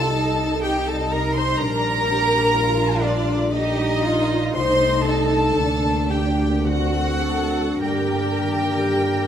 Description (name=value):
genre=classical, slow romantic movement for symphony orchestra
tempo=49-63 BPM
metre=3/4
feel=rubato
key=G minor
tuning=A4 = 440 Hz
part: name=dark studio violin section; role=melody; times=0.0-9.3 s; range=D4 to C5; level=-28 LUFS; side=left 1 dB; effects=none
part: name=warm chamber violin section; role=second line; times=0.0-9.3 s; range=D5 to C6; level=-25 LUFS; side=equal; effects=none
part: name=dark studio viola section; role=accompaniment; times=0.0-9.3 s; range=D4 to C5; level=-25 LUFS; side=right 1 dB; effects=none
part: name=dark French horn section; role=sustained chords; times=0.0-9.3 s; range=G3 to Eb4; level=-26 LUFS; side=left 3 dB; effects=none
part: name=concert harp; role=arpeggios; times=0.0-9.3 s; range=G2 to Eb4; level=-30 LUFS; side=left 5 dB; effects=none
part: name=dark chamber double bass section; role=bass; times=0.0-9.3 s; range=Bb1 to G2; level=-25 LUFS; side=right 3 dB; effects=none
part: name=warm chamber cello section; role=bass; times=0.0-9.3 s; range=D4 to Bb4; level=-28 LUFS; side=right 2 dB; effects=none
room=moderate concert hall reverb, RT60 2.1 s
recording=close, detailed microphones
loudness=-18 LUFS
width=side -9 dB against mid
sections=0.0-9.3 A section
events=none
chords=0.0 Cm; 1.6 Gm/Bb; 4.6 Adim/C; 5.6 Gm/D; 6.7 D7; 7.8 Gm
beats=0.64 | 1.61 2.56 3.54 | 4.55 5.58 6.66 | 7.82 9.01